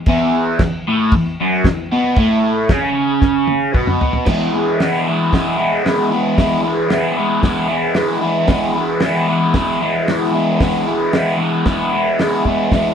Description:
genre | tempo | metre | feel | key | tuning
garage rock duo or trio | 114 BPM | 4/4 | straight | E major | A4 = 441 Hz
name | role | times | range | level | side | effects
crunchy overdriven guitar | riff | 0.0-12.9 s | E2 to E4 | -15 LUFS | equal | phaser
cloth-damped thuddy drum kit | drums | 0.1-12.8 s | crash cymbal, hi-hat, kick drum, snare drum, toms | -18 LUFS | equal | none
room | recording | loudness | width
moderate studio reverb, RT60 0.9 s | band playing live in one room | -14 LUFS | side -8 dB against mid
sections
0.0-4.3 A section; 4.3-12.9 B section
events
drum fill 3.2-4.3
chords
0.0 E5; 4.3 E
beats
| 0.07 0.60 1.12 1.65 | 2.17 2.70 3.23 3.75 | 4.28 4.80 5.33 5.86 | 6.39 6.91 7.44 7.97 | 8.50 9.03 9.56 10.09 | 10.61 11.14 11.67 12.20 | 12.73

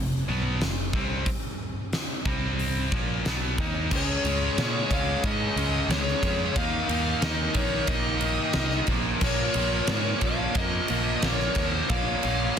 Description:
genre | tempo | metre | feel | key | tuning
hard rock | 91 BPM | 4/4 | straight | unclear | A4 = 444 Hz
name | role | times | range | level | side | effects
overdriven electric guitar | riff | 0.0-12.6 s | F2 to D#4 | -30 LUFS | equal | none
picked electric bass | bass | 0.0-12.5 s | F1 to Bb2 | -30 LUFS | equal | none
huge arena drum kit | drums | 0.6-12.6 s | crash cymbal, hi-hat, kick drum, ride cymbal, snare drum | -28 LUFS | equal | none
overdriven electric guitar | riff | 3.9-12.6 s | Bb2 to Eb4 | -32 LUFS | equal | none
high-gain lead guitar | melody | 4.0-12.6 s | Db5 to F5 | -30 LUFS | left 3 dB | distortion, slapback echo
smooth overdriven lead guitar | second line | 4.0-12.5 s | Ab4 to Db5 | -36 LUFS | right 3 dB | slapback echo
room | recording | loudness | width
light reverb, small room ambience | dense, heavily limited modern master | -23 LUFS | side -8 dB against mid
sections
0.0-3.9 A section; 3.9-12.6 B section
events
none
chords
0.0 F5; 2.3 C5; 2.9 Bmaj7#11/A#; 3.9 Db5; 6.6 Eb5; 8.9 Bbm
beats
0.62 | 1.28 1.94 2.60 3.26 | 3.92 4.58 5.25 5.91 | 6.57 7.23 7.90 8.56 | 9.23 9.89 10.56 11.23 | 11.90 12.57

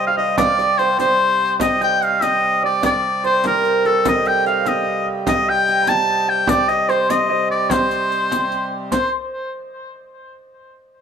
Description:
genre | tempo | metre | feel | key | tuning
medieval dance | 98 BPM (dotted quarters) | 6/8 | straight | C dorian | A4 = 440 Hz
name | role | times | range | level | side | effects
bright shawm | melody | 0.0-9.1 s | A4 to A5 | -18 LUFS | left 1 dB | plate reverb, tape echo
concert harp | second line | 0.0-9.1 s | A4 to Bb5 | -22 LUFS | right 3 dB | plate reverb
pedal harmonium | drone | 0.0-9.0 s | C3 to G3 | -27 LUFS | right 2 dB | plate reverb
frame drum | percussion | 0.2-9.1 s | none | -26 LUFS | right 4 dB | none
riq | percussion | 0.4-9.1 s | none | -26 LUFS | left 5 dB | none
room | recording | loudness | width
wet studio reverb, RT60 0.5 s | rough home demo mix | -15 LUFS | side -7 dB against mid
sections
0.0-8.9 A section; 8.9-10.1 B section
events
none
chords
none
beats
| 0.38 0.99 | 1.61 2.22 | 2.83 3.45 | 4.06 4.67 | 5.28 5.89 | 6.49 7.10 | 7.71 8.31 | 8.92

